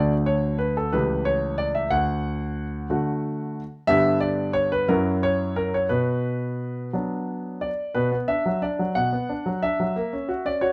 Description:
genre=classical-period piano sonatina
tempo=60 BPM (dotted quarters)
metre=6/8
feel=straight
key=D major, B minor from 3.9 s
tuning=A4 = 440 Hz
part: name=warm concert grand piano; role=solo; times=0.0-10.7 s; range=C#2 to F#5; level=-24 LUFS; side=equal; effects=none
room=moderate studio reverb, RT60 0.8 s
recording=dark, warm production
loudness=-25 LUFS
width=mono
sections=0.0-8.0 A section; 8.0-10.7 B section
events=none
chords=0.0 D; 0.9 A7/C#; 1.9 D; 3.9 G; 4.9 F#5; 5.9 Bm; 10.0 F#7/A#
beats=0.93 | 1.91 2.88 | 3.87 4.88 | 5.90 6.92 | 7.96 8.96 | 9.96

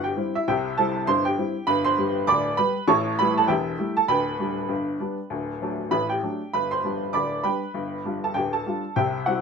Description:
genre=ragtime piano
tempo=99 BPM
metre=2/4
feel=swing 59% on 16ths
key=G major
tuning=A4 = 440 Hz
part: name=clear upright piano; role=solo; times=0.0-9.4 s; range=D1 to D6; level=-22 LUFS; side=right 1 dB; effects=none
room=light reverb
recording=minimal, uncompressed stereo recording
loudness=-22 LUFS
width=side -6 dB against mid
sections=0.0-9.4 A section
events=none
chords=0.0 C; 1.7 G; 2.9 A7; 4.1 G/D; 5.3 D; 6.5 G; 7.7 G7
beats=| 0.47 1.07 | 1.67 2.28 | 2.88 3.49 | 4.10 4.71 | 5.32 5.93 | 6.54 7.14 | 7.75 8.35 | 8.96

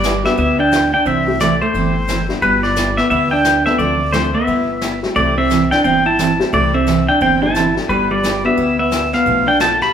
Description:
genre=country, western swing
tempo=176 BPM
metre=4/4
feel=swing 62% on 8ths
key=G major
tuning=A4 = 440 Hz
part: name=pedal steel guitar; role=melody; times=0.0-9.9 s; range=B4 to B5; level=-16 LUFS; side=left 1 dB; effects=none
part: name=vintage hollow-body jazz guitar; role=second line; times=0.0-9.9 s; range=G3 to G4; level=-19 LUFS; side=right 1 dB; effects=none
part: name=picked steel-string acoustic guitar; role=accompaniment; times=0.0-9.7 s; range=B2 to A4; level=-23 LUFS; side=right 6 dB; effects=none
part: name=upright bass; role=bass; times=0.0-9.8 s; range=G1 to D2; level=-23 LUFS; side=left 1 dB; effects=none
part: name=jazz brush drum kit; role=drums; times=0.0-9.9 s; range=brushed snare drum, hi-hat, snare drum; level=-26 LUFS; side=left 2 dB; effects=none
part: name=honky-tonk upright piano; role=accompaniment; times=0.2-9.8 s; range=G3 to A4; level=-24 LUFS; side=left 3 dB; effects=none
room=wet large studio reverb, RT60 1.2 s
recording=band playing live in one room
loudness=-13 LUFS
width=side -8 dB against mid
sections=0.0-9.9 A section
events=none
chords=0.0 G6; 1.1 C6; 2.4 G6; 3.8 Dm7; 4.5 G6; 5.2 C6; 7.9 G6; 9.3 Bm7b5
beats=0.04 0.38 0.72 | 1.06 1.40 1.75 2.09 | 2.43 2.77 3.11 3.45 | 3.80 4.14 4.48 4.82 | 5.16 5.50 5.85 6.19 | 6.53 6.87 7.21 7.55 | 7.90 8.24 8.58 8.92 | 9.26 9.61

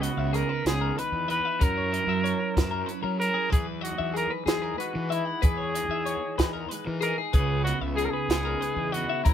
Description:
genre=math rock and midwest emo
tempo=63 BPM (dotted quarters)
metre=6/8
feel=straight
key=unclear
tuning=A4 = 441 Hz
part: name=clear trumpet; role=melody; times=0.0-9.3 s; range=E4 to B4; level=-29 LUFS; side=equal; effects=none
part: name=twelve-string electric guitar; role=accompaniment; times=0.0-9.3 s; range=C#3 to G#4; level=-34 LUFS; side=right 8 dB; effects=none
part: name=twelve-string electric guitar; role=arpeggios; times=0.0-9.3 s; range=G#4 to F#5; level=-33 LUFS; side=left 8 dB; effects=none
part: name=fuzz fingered electric bass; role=bass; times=0.0-9.3 s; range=C#2 to F#3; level=-32 LUFS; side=equal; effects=overdrive
part: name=compact cocktail drum kit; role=drums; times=0.0-9.3 s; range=hi-hat, kick drum, snare drum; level=-25 LUFS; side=equal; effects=none
room=moderate small room reverb, RT60 0.5 s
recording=band playing live in one room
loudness=-24 LUFS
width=side -9 dB against mid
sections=0.0-9.3 A section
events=none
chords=0.0 C#m9; 1.6 F#7; 3.5 Emaj9; 7.3 C#m9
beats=0.65 | 1.61 2.56 | 3.52 4.47 | 5.43 6.39 | 7.35 8.30 | 9.26

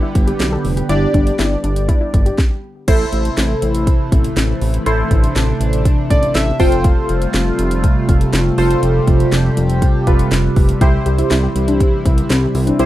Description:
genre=synth-pop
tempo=121 BPM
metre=4/4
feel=straight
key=A minor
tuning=A4 = 440 Hz
part: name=warm analog keys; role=accompaniment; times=0.0-12.9 s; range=D4 to G5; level=-20 LUFS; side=equal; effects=chorus, phaser
part: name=chorused pulse-width pad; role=sustained chords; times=0.0-12.9 s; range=C3 to G4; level=-19 LUFS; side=right 1 dB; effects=none
part: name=soft round pluck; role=arpeggios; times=0.0-2.4, 10.8-12.9 s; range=C4 to A4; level=-22 LUFS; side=left 2 dB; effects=chorus, tape echo
part: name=fat analog bass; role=bass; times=0.2-12.9 s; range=F1 to C2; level=-18 LUFS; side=equal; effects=none
part: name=house drum kit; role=drums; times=0.2-12.9 s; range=crash cymbal, hi-hat, kick drum, snare drum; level=-16 LUFS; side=equal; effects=none
room=light reverb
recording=dark, warm production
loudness=-13 LUFS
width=side -14 dB against mid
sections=0.0-2.9 A section; 2.9-12.9 B section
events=stop 2.4-2.9; synth keys fill 5.9-6.8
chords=0.0 G; 2.9 Am; 6.6 Fadd9; 10.8 C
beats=0.40 | 0.90 1.39 1.89 2.38 | 2.88 3.37 3.87 4.37 | 4.86 5.36 5.85 6.35 | 6.84 7.34 7.84 8.33 | 8.83 9.32 9.82 10.32 | 10.81 11.31 11.80 12.30 | 12.80

